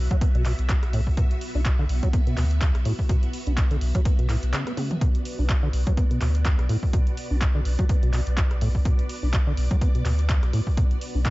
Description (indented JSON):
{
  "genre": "acid house",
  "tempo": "125 BPM",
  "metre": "4/4",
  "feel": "swing 56% on 16ths",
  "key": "B minor",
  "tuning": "A4 = 442 Hz",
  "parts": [
    { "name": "string machine, full ensemble", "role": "sustained chords", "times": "0.0-11.3 s", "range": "B3 to E5", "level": "-36 LUFS", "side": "equal", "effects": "phaser, ensemble chorus, sidechain pumping" },
    { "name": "warm sub bass", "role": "bass", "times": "0.0-11.3 s", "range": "B1 to D2", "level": "-24 LUFS", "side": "equal", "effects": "sidechain pumping" },
    { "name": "deep acid bass", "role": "riff", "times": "0.1-11.3 s", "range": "A2 to D4", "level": "-29 LUFS", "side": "equal", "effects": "tube saturation, analog chorus, cassette tape, sidechain pumping, analog delay" },
    { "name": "electronic kick drum", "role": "drums", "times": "0.1-11.3 s", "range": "none", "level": "-22 LUFS", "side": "equal", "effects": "overdrive" },
    { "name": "punchy analog drum machine", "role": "drums", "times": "0.1-11.3 s", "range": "handclaps, hi-hat, rim click, toms", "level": "-33 LUFS", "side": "equal", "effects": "overdrive" }
  ],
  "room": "little or no reverb",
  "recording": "nothing above 7.8 kHz",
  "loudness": "-21 LUFS",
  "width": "side -20 dB against mid",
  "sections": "0.0-11.3 A section",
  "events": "filter sweep on acid bass 0.0-11.3; break 4.5-5.0; drum fill 4.8",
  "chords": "0.0 Bm"
}